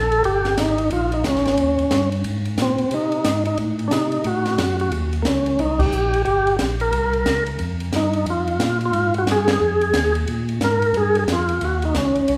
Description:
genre	soul jazz organ trio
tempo	180 BPM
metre	4/4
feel	swing 63% on 8ths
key	Eb mixolydian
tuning	A4 = 440 Hz
part	percussive tonewheel organ	melody	0.0-12.4 s	Bb3 to Bb4	-22 LUFS	equal	slow rotary speaker, overdrive
part	tonewheel organ	bass	0.0-12.4 s	G1 to C3	-26 LUFS	equal	slow rotary speaker
part	compact cocktail drum kit	drums	0.1-12.4 s	crash cymbal, hi-hat, kick drum, ride cymbal, snare drum	-29 LUFS	equal	none
room	wet recital hall reverb, RT60 1.6 s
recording	recorded in a church or concert hall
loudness	-20 LUFS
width	mono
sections	0.0-12.4 A section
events	band accent 5.8, 9.4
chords	0.0 Eb; 0.9 Bbm7; 1.6 Eb7; 2.2 Abadd9; 3.6 Adim7; 4.9 Eb6; 6.3 Gm; 6.9 Bbmadd9/C; 7.6 Fm7; 10.3 Bb5; 11.6 Eb5

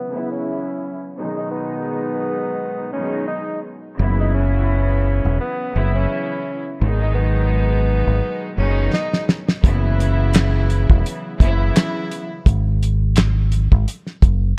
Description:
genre	hip hop, boom-bap hip-hop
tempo	85 BPM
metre	4/4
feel	swing 56% on 16ths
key	unclear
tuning	A4 = 440 Hz
part	breathy tenor saxophone	melody	0.0-9.3 s	B3 to D#4	-28 LUFS	equal	high-pass filter, low-pass filter, digital delay
part	warm studio string section	accompaniment	0.1-12.2 s	B2 to E4	-27 LUFS	equal	cassette tape, high-pass filter, low-pass filter
part	fingered electric bass	bass	4.0-14.5 s	E1 to G#1	-20 LUFS	equal	none
part	cloth-damped thuddy drum kit	drums	8.9-14.4 s	handclaps, hi-hat, kick drum, snare drum	-18 LUFS	equal	none
room	studio ambience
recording	none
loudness	-19 LUFS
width	mono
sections	0.0-9.6 A section; 9.6-14.6 B section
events	filter sweep 0.0-9.6; drum fill 8.9-9.6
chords	0.0 F#7sus4; 1.2 G#m7; 4.0 F#7sus4; 6.8 G#m7; 9.6 F#7sus4; 12.5 N.C.

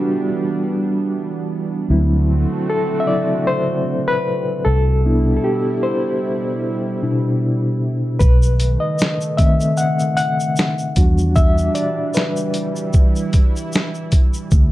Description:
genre	lo-fi hip hop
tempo	76 BPM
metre	4/4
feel	swing 55% on 16ths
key	E minor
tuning	A4 = 437 Hz
part	reed electric piano	accompaniment	0.0-14.5 s	B2 to F#5	-19 LUFS	left 1 dB	fast tremolo, cassette tape, low-pass filter, plate reverb
part	lush unison pad	sustained chords	0.0-14.7 s	B2 to F#4	-25 LUFS	right 3 dB	chorus, low-pass filter
part	vintage muted fingered electric bass	bass	1.9-14.7 s	B1 to E2	-16 LUFS	equal	none
part	boom bap sampler-style drum kit	drums	8.2-14.7 s	hi-hat, kick drum, shaker, snare drum	-15 LUFS	equal	none
room	moderate studio reverb, RT60 0.6 s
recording	dark, warm production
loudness	-16 LUFS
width	side -15 dB against mid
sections	0.0-14.7 A section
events	reed electric piano solo 0.0-14.7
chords	0.0 Em7; 1.9 D7; 4.7 Cmaj7; 8.2 B7b9; 11.0 Em7

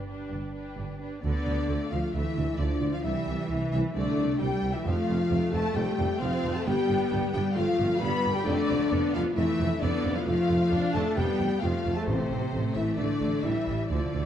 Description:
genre	cinematic, heroic adventure film score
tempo	133 BPM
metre	4/4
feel	straight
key	D dorian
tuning	A4 = 438 Hz
part	warm symphonic violin section	melody	0.0-14.3 s	B4 to B5	-39 LUFS	left 6 dB	none
part	clear symphonic violin section	second line	0.0-14.3 s	G4 to B5	-37 LUFS	left 3 dB	none
part	rich studio viola section	accompaniment	0.0-14.3 s	E3 to D4	-34 LUFS	right 1 dB	none
part	clear symphonic cello section	bass	0.0-14.3 s	G2 to B3	-33 LUFS	equal	none
part	rich studio double bass section	bass	0.0-14.2 s	G1 to G2	-32 LUFS	right 2 dB	none
part	dark French horn section	sustained chords	1.2-14.3 s	C4 to B4	-29 LUFS	left 3 dB	none
part	dark tuba	bass	1.2-14.2 s	F1 to D2	-34 LUFS	right 3 dB	none
part	timpani	percussion	12.1-14.3 s	A2 to D3	-37 LUFS	left 1 dB	none
room	moderate scoring stage reverb, RT60 1.8 s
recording	dark, warm production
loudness	-25 LUFS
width	side -10 dB against mid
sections	0.0-1.2 A section; 1.2-14.3 B section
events	timpani fill 13.9-14.3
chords	0.0 G; 1.2 Dm; 3.0 Cadd9; 4.9 F; 6.7 G; 8.5 Dm/F; 12.1 Am

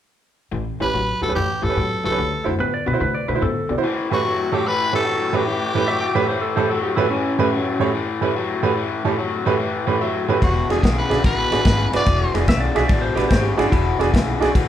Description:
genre	electric blues shuffle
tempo	146 BPM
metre	4/4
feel	swing 67% on 8ths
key	A mixolydian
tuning	A4 = 440 Hz
part	crunchy overdriven guitar	riff	0.5-14.7 s	E2 to B3	-24 LUFS	left 5 dB	none
part	upright bass	bass	0.5-3.8, 10.4-14.7 s	E1 to C3	-24 LUFS	equal	none
part	growling tenor saxophone	melody	0.8-6.6, 10.4-12.5 s	F#4 to D5	-23 LUFS	equal	none
part	bright upright piano	accompaniment	0.8-14.5 s	A2 to E5	-22 LUFS	right 4 dB	none
part	clean lap steel guitar	second line	2.6-7.9, 12.5-14.7 s	C#4 to G5	-25 LUFS	equal	none
part	warm soul drum kit	drums	10.4-14.7 s	kick drum, ride cymbal, snare drum	-20 LUFS	equal	none
room	wet large studio reverb, RT60 1.0 s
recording	band playing live in one room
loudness	-17 LUFS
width	side -10 dB against mid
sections	0.5-3.8 A section; 3.8-14.7 B section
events	upright piano fill 9.8-10.4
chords	0.5 A7; 2.2 D7; 3.8 A7; 10.4 E7

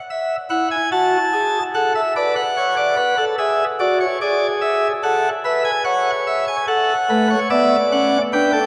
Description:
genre	classical, baroque-style 4-part fugue for pipe organ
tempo	73 BPM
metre	4/4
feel	straight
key	D major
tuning	A4 = 438 Hz
part	chamber organ, principal chorus	solo	0.1-8.7 s	A3 to A5	-18 LUFS	equal	none
room	wet cathedral reverb, RT60 6.5 s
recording	dark, warm production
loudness	-18 LUFS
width	mono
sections	0.0-8.7 A section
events	none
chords	0.1 A5/E; 1.7 Bm7/A; 3.4 E7; 5.0 A; 6.7 D/A

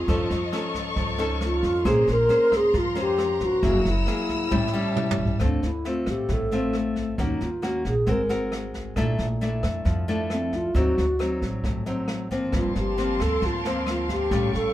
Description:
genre	bossa nova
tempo	135 BPM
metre	4/4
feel	straight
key	D minor from 5.4 s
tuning	A4 = 441 Hz
part	mellow hollow alto flute	melody	0.0-14.7 s	A3 to Bb4	-24 LUFS	equal	none
part	nylon-string guitar	accompaniment	0.0-14.7 s	G2 to C5	-28 LUFS	left 1 dB	none
part	warm studio string section	sustained chords	0.0-5.4, 12.5-14.7 s	A4 to Fb6	-32 LUFS	left 2 dB	none
part	upright bass	bass	0.0-14.7 s	Gb1 to F2	-28 LUFS	right 1 dB	none
part	jazz brush drum kit	drums	0.1-14.6 s	kick drum, rim click, snare drum, toms	-31 LUFS	equal	none
room	moderate small room reverb, RT60 0.5 s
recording	band playing live in one room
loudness	-22 LUFS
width	side -14 dB against mid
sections	0.0-5.4 A section; 5.4-14.7 B section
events	drum fill 4.5-5.4; alto flute solo 5.4-14.7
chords	0.1 Faug7; 1.9 Bbm9; 3.6 Gb9; 4.5 A7; 5.4 Dm7; 7.2 Ebm7; 8.1 G#9; 9.0 Bbmaj7#11; 10.7 D7b9; 12.5 Gm11

